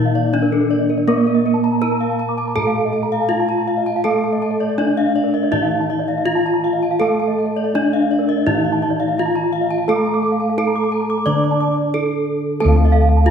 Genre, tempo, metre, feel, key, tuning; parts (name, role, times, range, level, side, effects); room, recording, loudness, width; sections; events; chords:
Balinese gamelan; 81-91 BPM; 4/4; straight; A4 = 440 Hz
gamelan-type bronze metallophone; melody; 0.0-13.3 s; Bb3 to D5; -19 LUFS; equal
gamelan-type bronze metallophone; accompaniment; 0.0-13.3 s; Eb3+35c to D4; -25 LUFS; right 2 dB
gamelan-type bronze metallophone; arpeggios; 0.0-13.3 s; A4 to D6; -24 LUFS; left 5 dB
gamelan-type bossed gongs; bass; 0.0-13.3 s; D2 to Bb4; -21 LUFS; left 1 dB
gamelan-type bronze metallophone; arpeggios; 0.1-13.3 s; Bb4 to D6; -24 LUFS; right 4 dB
wet scoring stage reverb, RT60 1.6 s; recorded in a church or concert hall; -15 LUFS; side -7 dB against mid
0.0-12.6 A section